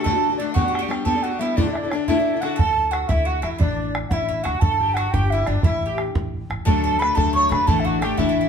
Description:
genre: celtic folk, Celtic jig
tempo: 118 BPM (dotted quarters)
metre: 6/8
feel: straight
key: D major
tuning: A4 = 440 Hz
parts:
  - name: wooden flute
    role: melody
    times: 0.0-8.5 s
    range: C#5 to C#6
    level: -23 LUFS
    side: right 2 dB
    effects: none
  - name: mandolin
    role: second line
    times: 0.0-8.5 s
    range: D4 to C#5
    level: -31 LUFS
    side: right 2 dB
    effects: none
  - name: sitar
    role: second line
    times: 0.0-8.5 s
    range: D4 to C#5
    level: -31 LUFS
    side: left 5 dB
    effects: none
  - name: picked acoustic archtop guitar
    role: accompaniment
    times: 0.0-2.6, 6.7-8.5 s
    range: D2 to A4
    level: -22 LUFS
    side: left 4 dB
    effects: none
  - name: bodhran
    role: percussion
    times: 0.1-8.4 s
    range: none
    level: -23 LUFS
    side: right 1 dB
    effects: none
  - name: upright bass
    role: bass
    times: 2.6-8.5 s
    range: G1 to D3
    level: -26 LUFS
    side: equal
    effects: none
room: moderate large studio reverb, RT60 1.0 s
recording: band playing live in one room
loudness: -18 LUFS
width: side -7 dB against mid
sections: 0.0-2.6 A section; 2.6-8.5 B section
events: none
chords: 0.0 D; 0.6 G; 1.6 Dsus2; 2.6 D5; 3.6 Asus4; 4.6 Gsus2; 5.6 A5; 6.7 D; 7.7 Asus4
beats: 0.05 | 0.56 1.06 | 1.57 2.08 | 2.59 3.10 | 3.61 4.12 | 4.62 5.13 | 5.64 6.15 | 6.66 7.17 | 7.67 8.18

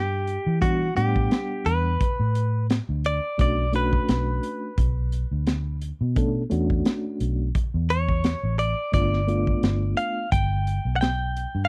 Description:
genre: straight-eighth soul blues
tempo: 87 BPM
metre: 4/4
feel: swing 55% on 16ths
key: B minor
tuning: A4 = 440 Hz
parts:
  - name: direct-recorded clean electric guitar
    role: melody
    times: 0.0-11.7 s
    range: F#4 to G5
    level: -30 LUFS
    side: equal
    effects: none
  - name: vintage muted fingered electric bass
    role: bass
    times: 0.0-11.7 s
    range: G1 to E3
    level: -27 LUFS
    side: equal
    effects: none
  - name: crunchy breakbeat drum kit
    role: drums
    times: 0.3-11.5 s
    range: hi-hat, kick drum, snare drum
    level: -27 LUFS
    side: equal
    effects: none
  - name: mellow reed electric piano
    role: accompaniment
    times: 0.6-10.3 s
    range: G3 to F#5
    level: -30 LUFS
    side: equal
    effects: fast tremolo
room: little or no reverb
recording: dry, close 1970s-style studio recording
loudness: -24 LUFS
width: mono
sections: 0.0-11.7 A section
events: none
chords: 0.0 Em7; 3.4 Bm7; 8.9 G7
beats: | 0.62 1.32 2.01 2.70 | 3.39 4.09 4.78 5.47 | 6.17 6.86 7.55 8.24 | 8.94 9.63 10.32 11.02

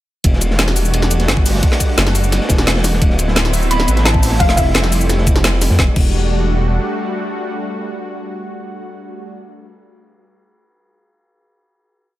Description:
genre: liquid drum and bass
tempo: 173 BPM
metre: 4/4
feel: straight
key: E minor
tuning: A4 = 440 Hz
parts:
  - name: lush unison pad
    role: sustained chords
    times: 0.2-9.3 s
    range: F#3 to F#4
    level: -23 LUFS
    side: equal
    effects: chorus
  - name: dark detuned saw bass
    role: bass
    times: 0.2-6.8 s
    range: D1 to F2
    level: -16 LUFS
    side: equal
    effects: none
  - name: crunchy breakbeat drum kit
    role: drums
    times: 0.2-5.8 s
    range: hi-hat, ride cymbal, snare drum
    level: -24 LUFS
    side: equal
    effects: high-pass filter on cymbals, high-pass filter on hats, high-pass filter on snare, high-pass filter on room
  - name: drum and bass drum kit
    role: drums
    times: 0.2-6.1 s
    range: cabasa, crash cymbal, hi-hat, snare drum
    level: -18 LUFS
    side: equal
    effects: overdrive
  - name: electronic kick drum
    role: drums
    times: 0.2-6.1 s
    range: none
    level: -15 LUFS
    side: equal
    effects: overdrive
  - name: soft round pluck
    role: melody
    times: 3.7-5.2 s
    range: E5 to B5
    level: -20 LUFS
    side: left 1 dB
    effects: lush chorus, tape echo
room: light reverb, small room ambience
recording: none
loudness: -13 LUFS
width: side -15 dB against mid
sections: 0.2-5.8 drop; 5.8-8.6 final chord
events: drop 0.2-5.8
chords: 0.2 Em11; 3.0 D13; 4.4 Fmaj7; 5.8 Em11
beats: | 0.24 0.59 0.94 1.28 | 1.63 1.98 2.32 2.67 | 3.02 3.36 3.71 4.06 | 4.40 4.75 5.10 5.44 | 5.79 6.14 6.48 6.83 | 7.18 7.52 7.87 8.22

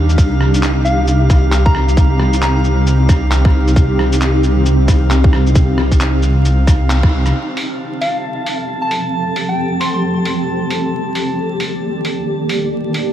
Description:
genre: future garage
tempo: 134 BPM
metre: 4/4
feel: swing 61% on 16ths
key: C dorian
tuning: A4 = 441 Hz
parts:
  - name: granular cloud pad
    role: sustained chords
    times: 0.0-13.1 s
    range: Eb3 to D5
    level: -18 LUFS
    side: equal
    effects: built-in reverb, sidechain pumping
  - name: dark detuned saw bass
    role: bass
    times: 0.0-7.3 s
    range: C2 to Eb2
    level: -13 LUFS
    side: equal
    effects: tube saturation, sidechain pumping
  - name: drifting glass-harmonics texture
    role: texture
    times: 0.0-13.1 s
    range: F5 to A5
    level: -28 LUFS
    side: equal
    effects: chorus, built-in reverb
  - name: lo-fi sampler-style drum kit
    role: drums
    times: 0.1-13.1 s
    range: handclaps, hi-hat, rim click, shaker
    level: -23 LUFS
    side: equal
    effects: none
  - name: electronic kick drum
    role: drums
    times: 0.2-7.1 s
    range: none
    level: -12 LUFS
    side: equal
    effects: overdrive
  - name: soft struck synth lead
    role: melody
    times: 0.8-2.6, 8.0-10.0 s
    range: F5 to C6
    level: -22 LUFS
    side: equal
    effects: chorus, diffuse ambient delay
room: moderate huge ambient reverb, RT60 4.7 s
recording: dreamy mix soaked in reverb, vinyl crackle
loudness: -12 LUFS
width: side -11 dB against mid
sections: 0.0-7.3 A section; 7.3-13.1 B section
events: band accent 6.9; filter sweep on ambient pad 7.3-13.1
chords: 0.2 Cm; 7.3 Fadd9; 10.9 Ebmaj7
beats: | 0.18 0.63 1.07 1.52 | 1.97 2.42 2.87 3.31 | 3.76 4.21 4.66 5.11 | 5.55 6.00 6.45 6.90 | 7.34 7.79 8.24 8.69 | 9.13 9.58 10.03 10.48 | 10.93 11.37 11.82 12.27 | 12.72

